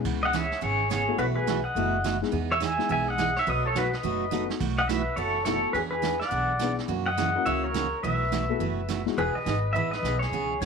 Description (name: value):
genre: country, western swing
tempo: 210 BPM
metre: 4/4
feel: swing 62% on 8ths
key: E major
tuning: A4 = 439 Hz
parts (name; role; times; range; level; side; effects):
- dark upright piano; accompaniment; 0.0-9.2 s; G#3 to B4; -32 LUFS; left 14 dB; none
- picked steel-string acoustic guitar; accompaniment; 0.0-10.7 s; B2 to G#4; -32 LUFS; right 13 dB; none
- upright bass; bass; 0.0-10.7 s; E1 to F#2; -32 LUFS; left 1 dB; none
- vintage brush drum kit; drums; 0.0-10.7 s; brushed snare drum, crash cymbal, hi-hat, kick drum, snare drum; -36 LUFS; right 10 dB; none
- pedal steel guitar; melody; 0.2-10.6 s; F#4 to G#5; -26 LUFS; left 1 dB; none
- clean lap steel guitar; second line; 10.6-10.7 s; C#5; -41 LUFS; left 13 dB; none
room: light reverb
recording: 1960s-style stereo with parts hard left and right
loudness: -24 LUFS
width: side -5 dB against mid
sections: 0.1-9.2 A section; 9.2-10.7 B section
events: drum fill 4.3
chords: 0.1 C#m7; 1.2 B7sus4; 2.3 Emaj7; 3.5 B7; 4.6 B7sus4; 5.8 E7; 6.9 F#7; 8.0 B7sus4; 9.2 Emaj7